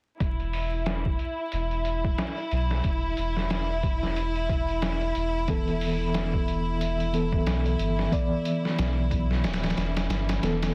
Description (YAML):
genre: trip hop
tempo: 91 BPM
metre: 4/4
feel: swing 58% on 16ths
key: E minor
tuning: A4 = 439 Hz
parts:
  - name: bright studio violin section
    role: sustained chords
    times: 0.2-10.7 s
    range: E4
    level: -34 LUFS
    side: equal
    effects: low-pass filter
  - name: warm sub bass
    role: bass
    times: 0.2-10.7 s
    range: D1 to B1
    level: -31 LUFS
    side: equal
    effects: none
  - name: trip hop sampler-style drum kit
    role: drums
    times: 0.2-10.7 s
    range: hi-hat, kick drum, snare drum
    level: -32 LUFS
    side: equal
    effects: low-pass filter on kick, low-pass filter on hats, low-pass filter on snare, low-pass filter on room
  - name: mellow reed electric piano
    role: accompaniment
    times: 5.5-10.7 s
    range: E3 to D5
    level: -31 LUFS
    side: equal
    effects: fast tremolo, tape echo
room: light reverb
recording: dense, heavily limited modern master, vinyl crackle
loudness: -27 LUFS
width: mono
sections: 0.2-10.7 A section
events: none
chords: 0.2 E5; 5.5 Asus2/E